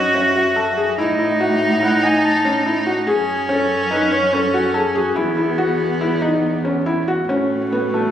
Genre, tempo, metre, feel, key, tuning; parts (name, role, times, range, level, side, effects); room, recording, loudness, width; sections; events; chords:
contemporary instrumental, chamber music in an uneven meter; 143 BPM; 5/4; straight; A lydian; A4 = 440 Hz
dark clarinet; melody; 0.0-8.1 s; F#4 to A5; -22 LUFS; left 2 dB
clear viola; second line; 0.0-8.1 s; A3 to F#4; -20 LUFS; right 2 dB
felt-muted upright piano; arpeggios; 0.0-8.1 s; A3 to A4; -20 LUFS; left 1 dB
dark cello; bass; 0.0-8.1 s; E2 to A2; -24 LUFS; right 2 dB
moderate concert hall reverb, RT60 2.3 s; recorded on a phone in the room, club reverb, compression; -15 LUFS; side -10 dB against mid
0.0-7.3 A section
0.0 F#madd9; 1.0 A5; 3.1 F#madd9; 5.2 E; 7.3 A6